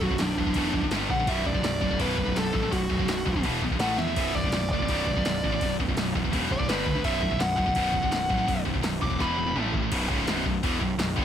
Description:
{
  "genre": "heavy metal",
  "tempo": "167 BPM",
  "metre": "4/4",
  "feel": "straight",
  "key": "B minor",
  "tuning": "A4 = 441 Hz",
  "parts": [
    { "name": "dark smooth lead guitar", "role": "melody", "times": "0.0-9.6 s", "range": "D4 to D6", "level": "-29 LUFS", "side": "equal", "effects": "overdrive" },
    { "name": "scooped high-gain guitar", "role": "riff", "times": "0.0-11.2 s", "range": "B1 to A3", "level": "-28 LUFS", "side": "equal", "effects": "distortion" },
    { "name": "fuzz picked electric bass", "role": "bass", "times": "0.0-11.2 s", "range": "B0 to E2", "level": "-31 LUFS", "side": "equal", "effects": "overdrive" },
    { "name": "electro analog drum machine", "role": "drums", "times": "0.0-11.2 s", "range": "crash cymbal, kick drum, snare drum, toms", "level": "-30 LUFS", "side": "equal", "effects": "overdrive" }
  ],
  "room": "digital ambience",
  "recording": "none",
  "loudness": "-24 LUFS",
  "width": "side -9 dB against mid",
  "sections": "0.0-9.9 A section; 9.9-11.2 B section",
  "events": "lead electric guitar solo 0.0-9.9; drum fill 4.0, 9.2-9.9",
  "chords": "0.0 Bm; 0.9 G5; 1.3 Bm; 3.4 E5; 3.8 A5; 4.2 Bm; 6.7 G5; 7.0 B5; 9.2 E5; 9.6 A5; 9.9 B5",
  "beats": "0.20 0.56 0.92 | 1.28 1.64 2.00 2.36 | 2.72 3.08 3.44 3.80 | 4.16 4.52 4.88 5.24 | 5.60 5.96 6.32 6.68 | 7.04 7.40 7.76 8.12 | 8.48 8.83 9.19 9.55 | 9.91 10.27 10.63 10.99"
}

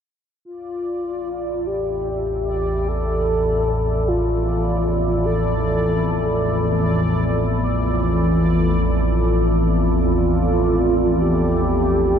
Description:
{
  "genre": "dark ambient drone",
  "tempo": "free time",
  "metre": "none",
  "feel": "none",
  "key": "unclear",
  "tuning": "A4 = 440 Hz",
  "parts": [
    { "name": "mellow horn-like synth lead", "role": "melody", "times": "0.5-12.2 s", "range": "F4 to A4", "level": "-23 LUFS", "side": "equal", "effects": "chorus, ping-pong delay" },
    { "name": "deep dark ambient pad", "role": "sustained chords", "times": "2.0-12.2 s", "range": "C4 to A4", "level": "-25 LUFS", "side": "right 2 dB", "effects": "chorus, built-in reverb" },
    { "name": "organ-like drone", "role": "drone", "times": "1.6-12.2 s", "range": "A1 to E2", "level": "-20 LUFS", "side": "equal", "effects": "ensemble chorus, built-in reverb" },
    { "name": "bubbling stepped-filter texture", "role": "texture", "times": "0.9-12.2 s", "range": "D5", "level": "-29 LUFS", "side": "right 2 dB", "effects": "chorus, built-in reverb" }
  ],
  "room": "wet huge ambient reverb, RT60 8.4 s",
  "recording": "dark, warm production",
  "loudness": "-17 LUFS",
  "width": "side -8 dB against mid",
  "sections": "0.5-12.2 A section",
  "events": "fade-out on synth texture 0.5-12.2",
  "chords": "0.5 F",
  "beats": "free time"
}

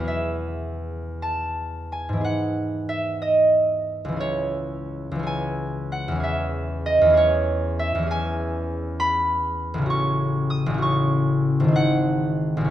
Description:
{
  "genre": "classical, solo harp piece",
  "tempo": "50-68 BPM (dotted quarters)",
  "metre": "6/8",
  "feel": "rubato",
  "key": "E major, C# minor from 8.1 s",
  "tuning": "A4 = 440 Hz",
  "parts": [
    { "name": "concert harp", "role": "solo", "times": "0.0-12.7 s", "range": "G#1 to D#6", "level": "-21 LUFS", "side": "equal", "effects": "none" }
  ],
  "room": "light reverb",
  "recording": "none",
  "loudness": "-21 LUFS",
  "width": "side -12 dB against mid",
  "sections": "0.1-12.7 A section",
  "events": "none",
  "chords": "0.1 E; 2.3 E/G#; 4.2 C#m; 6.2 C#m/E; 9.9 F#m/A; 11.8 G#",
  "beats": "| 0.08 1.23 | 2.26 3.22 | 4.21 5.28 | 6.24 7.17 | 8.10 8.99 | 9.89 10.81 | 11.75"
}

